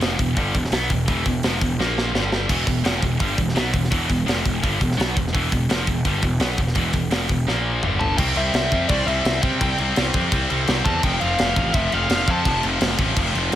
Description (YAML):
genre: heavy metal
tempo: 169 BPM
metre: 4/4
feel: straight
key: E phrygian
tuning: A4 = 440 Hz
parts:
  - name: heavy high-gain guitar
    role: riff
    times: 0.0-13.6 s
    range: E2 to C4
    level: -22 LUFS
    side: equal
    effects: distortion
  - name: fuzz picked electric bass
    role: bass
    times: 0.0-13.6 s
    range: E1 to C3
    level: -25 LUFS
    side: equal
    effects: overdrive
  - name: tight metal drum kit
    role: drums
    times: 0.0-13.6 s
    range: crash cymbal, hi-hat, kick drum, snare drum, toms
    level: -23 LUFS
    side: equal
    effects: none
  - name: high-gain lead guitar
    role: melody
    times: 8.0-12.6 s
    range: D5 to A5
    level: -25 LUFS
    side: left 1 dB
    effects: distortion
room: little or no reverb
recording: none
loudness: -18 LUFS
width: side -12 dB against mid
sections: 0.0-8.2 A section; 8.2-13.6 B section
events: drum fill 1.8-2.5, 7.5-8.2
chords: 0.0 Em; 1.8 A#5; 2.1 G5; 2.5 Em; 7.5 A#5; 7.8 G5; 8.2 C; 11.0 F5